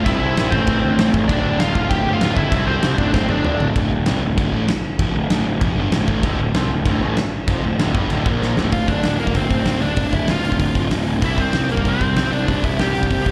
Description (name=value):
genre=punk rock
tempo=194 BPM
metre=4/4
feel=straight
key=D minor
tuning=A4 = 440 Hz
part: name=smooth overdriven lead guitar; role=melody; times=0.0-3.7, 8.7-13.3 s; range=Bb3 to G5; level=-25 LUFS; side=equal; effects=delay
part: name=sludgy distorted guitar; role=riff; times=0.0-13.3 s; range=D2 to C4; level=-25 LUFS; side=equal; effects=overdrive
part: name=tight distorted guitar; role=riff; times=0.0-3.8, 6.2-8.7 s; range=D2 to C4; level=-30 LUFS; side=equal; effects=distortion, slapback echo
part: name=fuzz picked electric bass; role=bass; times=0.1-13.3 s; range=D1 to D2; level=-24 LUFS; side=equal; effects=overdrive
part: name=big rock drum kit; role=drums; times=0.1-13.3 s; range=crash cymbal, hi-hat, kick drum, snare drum, toms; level=-24 LUFS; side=equal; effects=none
room=small room reverb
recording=live gig heard through the venue's PA, recital hall reverb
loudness=-19 LUFS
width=mono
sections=0.0-3.8 A section; 3.8-8.7 B section; 8.7-13.3 C section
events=drum fill 3.1-3.8, 8.4-8.7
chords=0.1 C; 0.5 Am; 1.3 Dm; 2.5 C; 3.0 D5; 3.8 Dm; 8.3 Bb5; 8.6 D5; 11.2 C